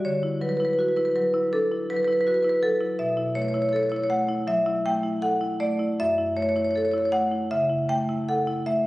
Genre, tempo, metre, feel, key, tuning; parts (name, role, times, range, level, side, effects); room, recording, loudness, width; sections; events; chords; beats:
classical, contemporary piece for solo marimba; 80 BPM; 4/4; rubato; D major; A4 = 440 Hz
marimba with medium hard mallets; solo; 0.0-8.9 s; F#2 to G5; -22 LUFS; equal
wet recital hall reverb, RT60 1.8 s; recorded on a phone in the room, studio reverb, compression; -22 LUFS; side -18 dB against mid
0.0-8.9 A section
0.0 D69; 3.0 B9sus4; 6.0 F#m7
| 0.03 0.76 1.50 2.25 | 2.98 3.73 4.49 5.24 | 6.00 6.75 7.51 8.28